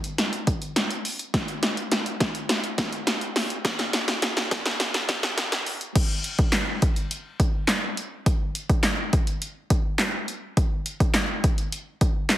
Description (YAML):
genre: pop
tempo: 104 BPM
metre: 4/4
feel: straight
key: none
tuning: none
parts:
  - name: punchy analog drum machine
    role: drums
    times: 0.0-12.4 s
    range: crash cymbal, handclaps, hi-hat, kick drum, snare drum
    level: -22 LUFS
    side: equal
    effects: overdrive
room: moderate digital room reverb, RT60 1.2 s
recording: heavily compressed radio sound, high-pass filter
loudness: -23 LUFS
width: side -13 dB against mid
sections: 0.0-6.0 A section; 6.0-12.4 B section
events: build-up 0.0-6.0; drum fill 0.0-6.0; filter sweep 0.0-6.0; drop 6.0-12.4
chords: none